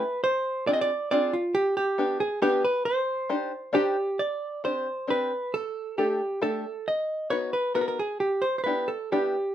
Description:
musette waltz; 135 BPM; 3/4; rubato; C minor; A4 = 440 Hz
hollow-body jazz guitar; melody; 0.0-9.5 s; F4 to Eb5; -26 LUFS; right 2 dB
open-back banjo; accompaniment; 0.0-9.4 s; A3 to C5; -28 LUFS; left 3 dB
moderate studio ambience, RT60 0.5 s; minimal, uncompressed stereo recording; -24 LUFS; side -11 dB against mid
0.0-4.2 A section; 4.2-9.5 B section
0.2 Dm7b5; 1.5 G; 2.8 Cmadd9; 4.2 Csus2; 5.5 Gsus2; 6.9 B; 8.2 Em7
| 0.24 0.68 1.11 | 1.55 1.98 2.41 | 2.85 3.29 3.73 | 4.19 4.64 5.09 | 5.54 5.98 6.42 | 6.86 7.31 7.76 | 8.21 8.66 9.12

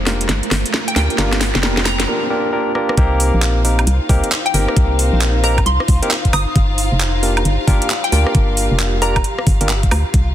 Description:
UK garage, two-step garage; 134 BPM; 4/4; swing 63% on 16ths; C minor; A4 = 440 Hz
dark studio violin section; sustained chords; 0.0-10.3 s; Bb3 to F5; -28 LUFS; left 2 dB; sidechain pumping
organ-like FM bass; bass; 0.0-10.3 s; F1 to D2; -17 LUFS; equal; tube saturation
riser; sound effects; 0.0-2.1 s; -26 LUFS; right 3 dB
granular cloud pad; texture; 0.0-10.3 s; Eb4 to Bb5; -28 LUFS; left 1 dB; built-in reverb, sidechain pumping
barky tine electric piano; stabs; 0.1-9.7 s; Bb3 to Bb4; -21 LUFS; equal; low-pass filter, ping-pong delay
garage drum kit; drums; 0.1-10.3 s; handclaps, hi-hat, rim click, snare drum, woodblock; -20 LUFS; right 1 dB; soft clipping on snare, studio reverb
hollow square pluck; melody; 0.9-9.2 s; G5 to Eb6; -23 LUFS; left 1 dB; wide subtle chorus, ping-pong delay
electronic kick drum; drums; 3.0-10.3 s; -16 LUFS; equal; studio reverb
light reverb; dense, heavily limited modern master; -13 LUFS; side -12 dB against mid
0.0-3.0 A section; 3.0-10.3 B section
build-up 0.0-3.0; drum fill 0.0-2.1, 2.8; riser 0.0-2.1; filter sweep on tine electric piano 0.0-3.0; break 2.1-3.0; drop 3.0-10.3
0.0 Gm7; 3.0 Cm7; 6.6 Gm7
0.29 0.73 | 1.18 1.63 2.08 2.53 | 2.97 3.42 3.87 4.32 | 4.76 5.21 5.66 6.11 | 6.56 7.00 7.45 7.90 | 8.35 8.79 9.24 9.69 | 10.14

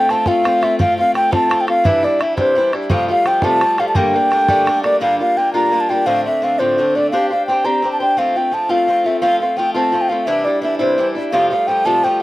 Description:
celtic folk, Celtic jig; 114 BPM (dotted quarters); 6/8; straight; A4 = 440 Hz
baroque flute; melody; 0.0-12.2 s; C5 to Bb5; -15 LUFS; equal
picked swing-style acoustic guitar; accompaniment; 0.0-12.2 s; F2 to C5; -19 LUFS; left 1 dB; slapback echo
bodhran; percussion; 0.1-4.9 s; -20 LUFS; right 1 dB
little or no reverb; recorded outdoors, with no room sound; -13 LUFS; side -17 dB against mid
0.0-5.0 A section; 5.0-12.2 A section
0.0 F; 1.8 Cadd9; 2.9 Fadd9; 4.0 Gmadd9; 5.0 Gm7; 6.1 F6/A; 7.1 Csus2; 8.2 F; 10.3 Cadd9; 11.3 Fadd9
0.27 | 0.79 1.32 | 1.85 2.37 | 2.90 3.43 | 3.95 4.48 | 5.01 5.54 | 6.06 6.59 | 7.12 7.64 | 8.17 8.70 | 9.22 9.75 | 10.28 10.80 | 11.33 11.85

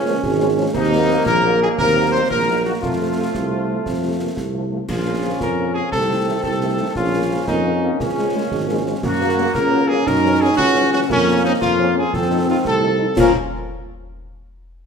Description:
military-style march for wind band; 116 BPM (dotted quarters); 6/8; straight; Bb minor; A4 = 440 Hz
dark trumpet section; melody; 0.0-13.3 s; Db4 to C5; -21 LUFS; left 1 dB
dark euphonium; second line; 0.0-12.9 s; Ab3 to Eb4; -24 LUFS; right 3 dB
clear trombone section; sustained chords; 0.0-13.3 s; Eb3 to Db4; -25 LUFS; right 2 dB
dark tuba; bass; 0.0-13.3 s; Ab1 to Bb2; -21 LUFS; equal
dark French horn section; accompaniment; 0.1-13.3 s; C3 to F4; -26 LUFS; left 4 dB
concert snare drum, concert bass drum and clash cymbals; drums; 0.2-13.4 s; -29 LUFS; left 1 dB
moderate recital hall reverb, RT60 1.6 s; minimal, uncompressed stereo recording; -16 LUFS; side -6 dB against mid
0.0-13.2 A section; 13.2-14.2 B section
0.0 Db; 0.7 Ebm; 2.8 F; 4.9 Bbm; 5.9 Adim/C; 7.0 Bbm; 8.0 Db; 9.0 Gb; 10.1 Gb7; 11.1 Bbm/F; 12.1 F7; 13.2 Bbm
0.23 | 0.75 1.26 | 1.78 2.30 | 2.82 3.33 | 3.85 4.37 | 4.89 5.41 | 5.92 6.44 | 6.96 7.48 | 7.99 8.51 | 9.03 9.55 | 10.06 10.58 | 11.10 11.62 | 12.13 12.65 | 13.17

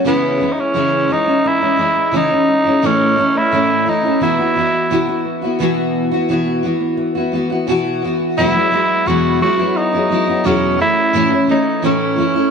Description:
acoustic pop; 87 BPM; 4/4; straight; E major; A4 = 440 Hz
fingerpicked steel-string acoustic guitar; accompaniment; 0.0-12.5 s; E2 to F#4; -16 LUFS; left 1 dB; double-tracked left and right
flamenco guitar; arpeggios; 0.0-8.9 s; E3 to A4; -27 LUFS; right 2 dB
raspy tenor saxophone; melody; 0.1-12.5 s; B3 to F#4; -16 LUFS; right 2 dB; tape echo
wet spring reverb, RT60 2.9 s; dark, warm production; -13 LUFS; side -6 dB against mid
0.0-5.6 A section; 5.6-8.4 B section; 8.4-12.5 C section
0.1 C#m; 2.8 A; 4.2 Bsus4; 8.4 Eadd9; 10.8 A
| 0.05 0.74 1.44 2.13 | 2.83 3.52 4.21 4.91 | 5.60 6.29 6.99 7.68 | 8.37 9.06 9.75 10.45 | 11.14 11.83

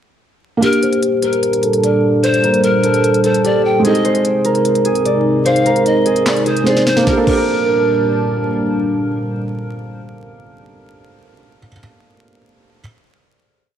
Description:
hip hop, trap; 149 BPM; 4/4; half-time; G minor; A4 = 440 Hz
concert harp; melody; 0.6-9.4 s; G4 to D5; -16 LUFS; right 1 dB; low-pass filter, tape echo
breathy pan flute; second line; 0.6-8.2 s; Bb4 to G5; -22 LUFS; left 1 dB; tape echo
felt-muted upright piano; accompaniment; 0.6-12.8 s; Ab3 to Bb4; -20 LUFS; right 3 dB; low-pass filter
dark analog pad; sustained chords; 1.2-11.1 s; Bb2 to A5; -19 LUFS; left 1 dB; chorus, low-pass filter
trap drum kit; drums; 0.6-7.4 s; crash cymbal, handclaps, hi-hat, kick drum, snare drum; -22 LUFS; equal
moderate lush hall reverb, RT60 2.4 s; vinyl crackle; -12 LUFS; side -9 dB against mid
0.6-7.1 breakdown; 7.1-10.3 final chord
filter sweep 0.6-7.1; drum fill 6.7-7.1
0.6 Gmadd9; 3.8 Ab; 7.1 Gmadd9
| 0.62 1.03 1.43 1.83 | 2.24 2.64 3.04 3.44 | 3.85 4.25 4.65 5.05 | 5.46 5.86 6.26 6.67 | 7.07 7.47 7.87 8.28 | 8.68 9.08 9.48 9.89

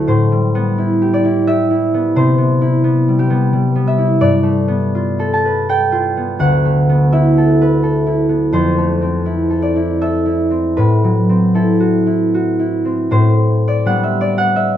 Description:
classical, solo harp piece; 76-89 BPM; 3/4; rubato; A dorian; A4 = 436 Hz
concert harp; solo; 0.0-14.8 s; D2 to A5; -12 LUFS; equal
light reverb; close, detailed microphones; -12 LUFS; side -10 dB against mid
0.0-13.1 A section; 13.1-14.8 A section
0.1 Am9; 2.1 Cmaj7; 4.2 G9; 6.4 D69; 8.5 Fmaj7; 10.8 Am6; 13.1 Am11
| 0.07 0.76 1.46 | 2.15 2.83 3.53 | 4.23 4.95 5.70 | 6.41 7.13 7.84 | 8.53 9.26 10.00 | 10.76 11.55 12.33 | 13.10 13.84 14.55

